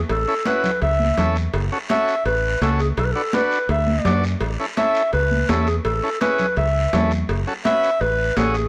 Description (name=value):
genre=latin, cumbia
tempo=167 BPM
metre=4/4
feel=straight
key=A major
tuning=A4 = 440 Hz
part: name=fingered electric bass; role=bass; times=0.0-8.7 s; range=F#1 to F#2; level=-24 LUFS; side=equal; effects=none
part: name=mellow clarinet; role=melody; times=0.1-8.7 s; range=G#4 to E5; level=-24 LUFS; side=equal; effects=none
part: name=congas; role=percussion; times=0.1-8.5 s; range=none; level=-28 LUFS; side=equal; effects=none
part: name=cowbell and timbales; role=percussion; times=0.1-8.5 s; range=none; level=-32 LUFS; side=equal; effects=none
part: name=guiro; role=percussion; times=0.1-8.7 s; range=none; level=-37 LUFS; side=equal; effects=none
part: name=overdriven combo organ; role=accompaniment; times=0.3-8.6 s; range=C#4 to D5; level=-28 LUFS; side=equal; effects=none
room=light reverb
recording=dark, warm production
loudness=-20 LUFS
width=mono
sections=0.0-8.7 A section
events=none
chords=0.0 Aadd9; 1.5 F#m7; 3.0 Bm; 4.4 Aadd9; 7.3 F#m7